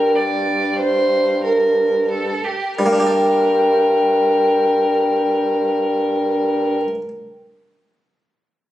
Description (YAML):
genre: classical, baroque-style sonata movement with continuo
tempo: 45 BPM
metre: 4/4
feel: straight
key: G minor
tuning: A4 = 439 Hz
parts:
  - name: mellow hollow silver concert flute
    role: melody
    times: 0.0-6.8 s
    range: G5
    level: -22 LUFS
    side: left 6 dB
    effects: none
  - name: rich violin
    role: second line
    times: 0.0-6.8 s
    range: G4 to D5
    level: -19 LUFS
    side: right 2 dB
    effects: none
  - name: harpsichord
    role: accompaniment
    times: 0.0-7.1 s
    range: G2 to D5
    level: -24 LUFS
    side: equal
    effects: none
  - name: mellow bassoon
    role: bass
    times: 0.0-6.8 s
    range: G2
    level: -19 LUFS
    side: equal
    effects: none
room: light reverb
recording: recorded on a phone in the room, club reverb, compression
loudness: -15 LUFS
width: side -14 dB against mid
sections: 0.0-2.8 A section; 2.8-8.2 B section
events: slowing down 0.0-2.8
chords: 0.0 Gm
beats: 0.15 1.44 | 2.79 4.13 5.47 6.82